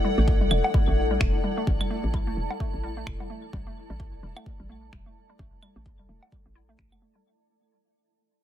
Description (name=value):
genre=minimal techno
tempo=129 BPM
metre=4/4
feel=swing 58% on 16ths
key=unclear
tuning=A4 = 444 Hz
part: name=hollow square pluck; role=riff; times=0.0-7.2 s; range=G3 to E4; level=-34 LUFS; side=right 1 dB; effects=chorus, sidechain pumping, digital delay
part: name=granular cloud pad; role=texture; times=0.0-7.3 s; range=E4 to A5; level=-30 LUFS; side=left 3 dB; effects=built-in reverb, sidechain pumping
part: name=hollow knocking FM bass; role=bass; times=0.2-6.9 s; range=E1 to A1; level=-27 LUFS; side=equal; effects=sidechain pumping
part: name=electronic kick drum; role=drums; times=0.3-6.9 s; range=none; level=-26 LUFS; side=equal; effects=small room ambience
part: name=claves and woodblock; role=percussion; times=0.5-7.0 s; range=none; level=-30 LUFS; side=equal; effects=small room ambience, ping-pong delay
part: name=electronic finger snaps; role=drums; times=1.2-6.9 s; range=none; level=-31 LUFS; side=equal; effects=overdrive, low-pass filter on hats, small room ambience, soft clipping on snare, low-pass filter on snare
room=light reverb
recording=dense, heavily limited modern master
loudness=-23 LUFS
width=side -11 dB against mid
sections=0.0-7.3 A section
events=fade-out 0.0-7.3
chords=0.0 Asus4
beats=0.28 0.74 1.21 | 1.67 2.14 2.60 3.07 | 3.53 4.00 4.46 4.93 | 5.39 5.86 6.32 6.79